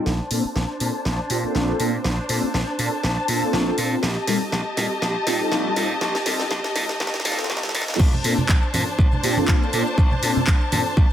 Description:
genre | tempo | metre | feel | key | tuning
filtered disco house | 121 BPM | 4/4 | swing 55% on 16ths | Bb major | A4 = 442 Hz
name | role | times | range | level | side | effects
mellow synth brass | accompaniment | 0.0-10.8 s | G3 to A4 | -26 LUFS | equal | chorus, phaser, sidechain pumping, low-pass filter
warm studio string section | sustained chords | 0.0-11.1 s | D4 to A5 | -26 LUFS | left 2 dB | sidechain pumping, low-pass filter
glassy slap bass | bass | 0.1-11.1 s | Bb1 to Bb2 | -25 LUFS | equal | sidechain pumping, low-pass filter
house drum kit | drums | 0.1-10.8 s | crash cymbal, handclaps, hi-hat, snare drum | -27 LUFS | equal | high-pass filter on snare, small room ambience, sidechain pumping on hats, high-pass filter on hats, sidechain pumping on cymbals, high-pass filter on cymbals
electronic kick drum | drums | 8.0-11.1 s | none | -17 LUFS | equal | small room ambience
maracas and congas | percussion | 8.0-11.1 s | none | -27 LUFS | right 2 dB | sidechain pumping on perc, low-pass filter on perc
room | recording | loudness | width
moderate echo chamber reverb, RT60 1.2 s, digital ambience | high-pass filter | -19 LUFS | side -10 dB against mid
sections
0.1-8.0 A section; 8.0-11.1 B section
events
build-up 0.1-8.0; drum fill 0.1-8.0; filter sweep 0.1-8.0; drop 8.0-11.1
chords
0.1 Bbmaj9; 4.0 F9/Bb; 8.0 Bbmaj9

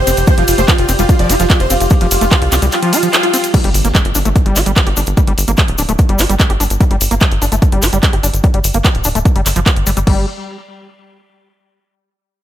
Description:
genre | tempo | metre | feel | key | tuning
psychedelic trance | 147 BPM | 4/4 | straight | unclear | A4 = 440 Hz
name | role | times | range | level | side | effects
dense compressed supersaw | melody | 0.0-3.5 s | F4 to D5 | -17 LUFS | equal | phaser, sidechain pumping, digital delay
overtone-sweeping drone | sustained chords | 0.0-3.5 s | G3 to G4 | -22 LUFS | left 1 dB | chorus, built-in reverb, sidechain pumping
tight sequencer bass | bass | 0.0-10.3 s | D1 to C2 | -16 LUFS | equal | none
overdriven acid bass | riff | 0.1-10.3 s | F3 to G4 | -20 LUFS | moving between left 3 dB and right 3 dB | distortion, auto-pan, sidechain pumping, digital delay
techno drum kit | drums | 0.1-10.2 s | crash cymbal, handclaps, hi-hat, ride cymbal | -18 LUFS | right 1 dB | none
cabasa | percussion | 0.1-10.1 s | none | -21 LUFS | left 5 dB | none
electronic kick drum | drums | 0.3-10.2 s | none | -12 LUFS | equal | none
impact | sound effects | 3.5-5.2 s | none | -24 LUFS | equal | none
room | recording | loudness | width
little or no reverb | none | -10 LUFS | side -12 dB against mid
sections
0.0-3.5 A section; 3.5-10.1 B section; 10.1-11.7 C section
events
drop 0.0-3.5; band accent 3.1; impact 3.5-5.2; filter sweep on analog synth bass 3.5-10.1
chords
0.0 F5; 3.5 G5; 10.1 N.C.

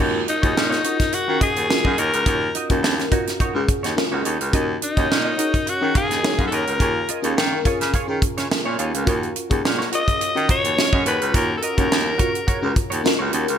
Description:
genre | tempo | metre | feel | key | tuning
polished 1980s jazz-funk pop | 106 BPM | 4/4 | swing 54% on 16ths | unclear | A4 = 440 Hz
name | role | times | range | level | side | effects
FM electric piano with soft pad layer | accompaniment | 0.0-13.6 s | Db4 to Ab5 | -25 LUFS | left 2 dB | tremolo, wide subtle chorus
semi-hollow electric guitar | riff | 0.0-13.5 s | Eb4 to F5 | -30 LUFS | right 3 dB | analog chorus
clear baritone saxophone | bass | 0.0-13.6 s | Db2 to Eb3 | -24 LUFS | equal | none
raspy alto saxophone | melody | 0.3-12.8 s | Eb4 to Eb5 | -22 LUFS | left 2 dB | none
tight funk drum kit | drums | 0.3-13.6 s | hi-hat, kick drum, snare drum | -22 LUFS | right 1 dB | gated reverb
room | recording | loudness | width
moderate plate reverb, RT60 1.6 s, studio reverb | bright 1980s-style digital production | -18 LUFS | side -8 dB against mid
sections
0.0-13.6 A section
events
none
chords
0.0 Gbmaj13; 6.8 Bbm7/Eb; 9.1 Ebm7

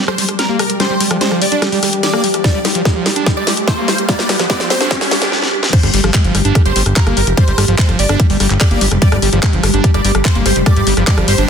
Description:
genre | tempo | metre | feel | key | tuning
psychedelic trance | 146 BPM | 4/4 | straight | unclear | A4 = 440 Hz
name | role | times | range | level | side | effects
pulsing gated texture | sustained chords | 0.0-11.5 s | G3 to G4 | -20 LUFS | right 1 dB | chorus, built-in reverb, sidechain pumping
screaming distorted acid line | riff | 0.0-11.5 s | F3 to D4 | -21 LUFS | moving between left 7 dB and right 7 dB | distortion, chorus, auto-pan, vintage 12-bit sampler grit, sidechain pumping, ping-pong delay
riser | sound effects | 0.8-5.3 s | none | -24 LUFS | left 1 dB | none
warbly tape-like pad | texture | 0.2-5.3 s | G4 to G5 | -25 LUFS | left 2 dB | chorus, built-in reverb, sidechain pumping
dense compressed supersaw | melody | 0.1-11.4 s | Bb4 to D5 | -22 LUFS | right 1 dB | phaser, sidechain pumping, digital delay
garage drum kit | drums | 0.1-11.5 s | crash cymbal, handclaps, hi-hat, rim click, snare drum | -17 LUFS | left 1 dB | soft clipping on snare, high-pass filter on snare, studio reverb, high-pass filter on hats, high-pass filter on cymbals
electronic kick drum | drums | 2.4-11.2 s | none | -13 LUFS | equal | studio reverb
fat analog bass | bass | 5.8-11.5 s | F1 to G1 | -15 LUFS | equal | none
room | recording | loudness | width
light reverb | dense, heavily limited modern master, high-pass filter | -11 LUFS | side -7 dB against mid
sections
0.0-5.7 A section; 5.7-11.5 B section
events
build-up 0.0-5.7; drum fill 0.0-5.3, 5.3-5.7; filter sweep on acid bass 0.0-5.7; filter sweep on synth texture 0.0-5.7; riser 0.8-5.3; drop 5.7-11.5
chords
0.0 G5

